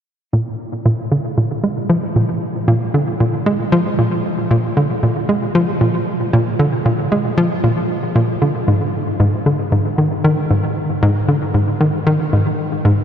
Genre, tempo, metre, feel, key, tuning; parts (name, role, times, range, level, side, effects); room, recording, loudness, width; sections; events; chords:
ambient; 115 BPM; 4/4; straight; A4 = 439 Hz
hollow square pluck; solo; 0.3-13.0 s; Ab2 to Ab3; -14 LUFS; equal; chorus, analog delay
wet huge ambient reverb, RT60 7.5 s; dreamy mix soaked in reverb; -15 LUFS; side -8 dB against mid
0.3-13.0 A section